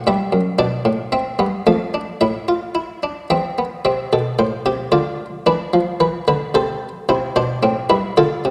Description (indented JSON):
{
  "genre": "classical, baroque-style 3-part fugue for harpsichord",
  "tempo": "111 BPM",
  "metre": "3/4",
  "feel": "straight",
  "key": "A minor",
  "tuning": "A4 = 439 Hz",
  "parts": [
    { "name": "buff-stop harpsichord", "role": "solo", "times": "0.0-8.5 s", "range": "E2 to F5", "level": "-19 LUFS", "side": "equal", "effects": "none" }
  ],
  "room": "wet concert hall reverb, RT60 1.9 s",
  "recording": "none",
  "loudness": "-19 LUFS",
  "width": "mono",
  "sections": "0.0-3.8 A section; 3.8-7.1 B section; 7.1-8.5 C section",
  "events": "none",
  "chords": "0.1 Em/G; 0.6 Bm7b5; 2.2 Esus4/A; 3.3 E5; 3.8 Am; 4.9 Dm; 5.5 E5; 6.5 Am/C; 7.1 C"
}